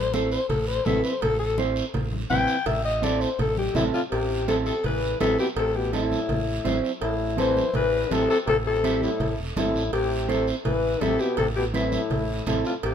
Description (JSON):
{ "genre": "latin, cumbia", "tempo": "165 BPM", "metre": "4/4", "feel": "straight", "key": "A minor", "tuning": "A4 = 440 Hz", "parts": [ { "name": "breathy alto saxophone", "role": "melody", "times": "0.0-12.9 s", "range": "E4 to G5", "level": "-26 LUFS", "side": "left 3 dB", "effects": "none" }, { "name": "modern bright fingered electric bass", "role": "bass", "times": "0.0-12.9 s", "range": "E1 to A1", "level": "-30 LUFS", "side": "right 1 dB", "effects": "none" }, { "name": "mellow electric guitar", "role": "accompaniment", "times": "0.1-12.7 s", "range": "C4 to C5", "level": "-29 LUFS", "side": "right 5 dB", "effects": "none" }, { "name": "congas", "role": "percussion", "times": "0.1-12.7 s", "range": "none", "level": "-32 LUFS", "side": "left 2 dB", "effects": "none" }, { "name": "guiro", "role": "percussion", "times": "0.1-12.9 s", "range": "none", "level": "-38 LUFS", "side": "right 4 dB", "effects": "none" }, { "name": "cowbell and timbales", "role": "percussion", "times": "0.5-12.9 s", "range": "none", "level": "-35 LUFS", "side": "right 3 dB", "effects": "none" }, { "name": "clear trombone", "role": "second line", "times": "3.8-12.9 s", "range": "A2 to E3", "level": "-30 LUFS", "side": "left 3 dB", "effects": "none" } ], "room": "light reverb", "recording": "minimal, uncompressed stereo recording", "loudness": "-22 LUFS", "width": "side -8 dB against mid", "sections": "0.0-4.1 A section; 4.1-12.9 B section", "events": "alto saxophone solo 0.0-4.1", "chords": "0.0 Am" }